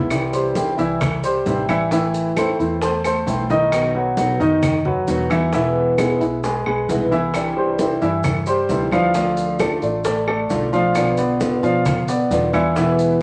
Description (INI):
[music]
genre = latin, Cuban son and guajira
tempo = 133 BPM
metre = 4/4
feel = straight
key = unclear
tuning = A4 = 441 Hz
[part]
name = nylon-string guitar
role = accompaniment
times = 0.0-13.2 s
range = B2 to F#4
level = -24 LUFS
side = equal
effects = none
[part]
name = warm baby grand piano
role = arpeggios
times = 0.0-13.1 s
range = D#3 to F5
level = -22 LUFS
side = equal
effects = none
[part]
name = vintage muted fingered electric bass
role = bass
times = 0.0-13.2 s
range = A1 to B2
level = -31 LUFS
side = equal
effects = none
[part]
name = bongos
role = percussion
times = 0.1-13.2 s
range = none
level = -32 LUFS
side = equal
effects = none
[part]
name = claves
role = percussion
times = 0.1-12.8 s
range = none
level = -33 LUFS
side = equal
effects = none
[part]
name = congas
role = percussion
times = 0.1-13.2 s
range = none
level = -29 LUFS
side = equal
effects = none
[part]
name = maracas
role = percussion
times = 0.1-13.2 s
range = none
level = -41 LUFS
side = equal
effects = none
[sound]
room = moderate studio reverb, RT60 0.7 s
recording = none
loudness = -19 LUFS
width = mono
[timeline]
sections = 0.1-13.2 A section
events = none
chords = 0.1 C; 1.9 Am; 3.7 B; 5.5 E; 7.3 Cadd9; 9.1 Dm; 11.0 Bdim